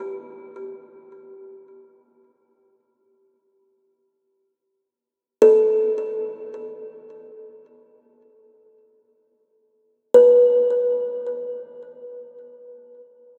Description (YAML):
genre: world meditative, free-time meditation music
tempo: free time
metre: none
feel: none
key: unclear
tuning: A4 = 436 Hz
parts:
  - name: kalimba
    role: solo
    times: 0.0-13.4 s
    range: E4 to B4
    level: -18 LUFS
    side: equal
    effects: delay
room: wet cathedral reverb, RT60 5.3 s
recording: none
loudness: -18 LUFS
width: mono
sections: 0.0-13.0 A section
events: none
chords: none